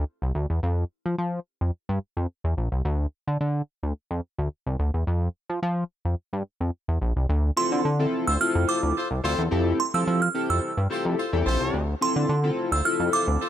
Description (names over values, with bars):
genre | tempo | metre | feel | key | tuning
funk | 108 BPM | 4/4 | straight | F major | A4 = 440 Hz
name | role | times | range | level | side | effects
chorused synth bass | bass | 0.0-13.4 s | Bb1 to F3 | -24 LUFS | equal | none
delicate synth tine bell | melody | 7.6-13.5 s | C6 to F6 | -26 LUFS | right 4 dB | chorus, slapback echo
chorused polysynth | accompaniment | 7.6-13.4 s | C4 to A4 | -27 LUFS | left 2 dB | none
warm horn section | second line | 8.3-13.5 s | F4 to C5 | -31 LUFS | left 1 dB | none
room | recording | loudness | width
digital ambience | none | -23 LUFS | side -11 dB against mid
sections
0.0-7.3 A section; 7.3-13.5 B section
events
none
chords
0.0 D7sus2; 0.6 F5; 2.8 N.C.; 5.1 F5; 7.3 Dm9; 9.5 Fmaj7; 11.7 Dm9